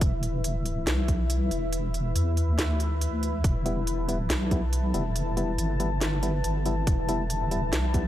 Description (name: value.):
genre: deep dubstep.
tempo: 140 BPM.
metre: 4/4.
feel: swing 58% on 16ths, half-time.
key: E minor.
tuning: A4 = 442 Hz.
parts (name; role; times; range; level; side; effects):
deep dark ambient pad; sustained chords; 0.0-8.1 s; E4 to A5; -32 LUFS; left 2 dB; chorus, built-in reverb.
deep soft wobble bass; bass; 0.0-8.1 s; E1 to E2; -27 LUFS; equal; chorus.
electronic kick drum; drums; 0.0-8.0 s; none; -26 LUFS; equal; none.
garage drum kit; drums; 0.0-8.0 s; hi-hat, snare drum; -32 LUFS; right 1 dB; none.
percussive organ stab; stabs; 3.7-8.0 s; G3 to E4; -33 LUFS; left 1 dB; chorus, dub echo.
room: digital ambience.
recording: none.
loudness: -24 LUFS.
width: side -13 dB against mid.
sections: 0.0-8.1 A section.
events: none.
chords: 0.0 Em.